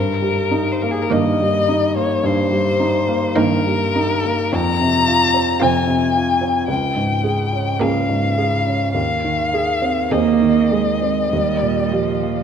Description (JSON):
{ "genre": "classical, slow romantic movement for piano quintet", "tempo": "49-56 BPM", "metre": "4/4", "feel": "rubato", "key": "unclear", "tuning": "A4 = 437 Hz", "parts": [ { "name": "warm violin", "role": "melody", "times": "0.0-12.4 s", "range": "Ab4 to Bb5", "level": "-20 LUFS", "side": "left 4 dB", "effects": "none" }, { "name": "clear grand piano", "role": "accompaniment", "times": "0.0-12.4 s", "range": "Db2 to Ab4", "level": "-19 LUFS", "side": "equal", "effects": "none" }, { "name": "rich violin", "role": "second line", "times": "1.1-11.0 s", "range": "Eb4 to Ab4", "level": "-26 LUFS", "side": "equal", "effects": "none" }, { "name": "warm cello", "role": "second line", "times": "1.1-12.4 s", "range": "C3 to Bb3", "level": "-21 LUFS", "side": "right 9 dB", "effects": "none" }, { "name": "warm viola", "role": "accompaniment", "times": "1.1-11.0 s", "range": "Bb3 to C4", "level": "-24 LUFS", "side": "right 7 dB", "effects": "none" } ], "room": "wet scoring stage reverb, RT60 1.9 s", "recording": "none", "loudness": "-15 LUFS", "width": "side -7 dB against mid", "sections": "0.0-12.4 A section", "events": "none", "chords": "0.0 Eb/G; 4.5 Fm; 6.7 Bbm7/Db; 8.9 Ab/Eb; 11.3 Eb", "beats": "1.11 2.24 3.36 | 4.53 5.61 6.68 7.80 | 8.95 10.11 11.31" }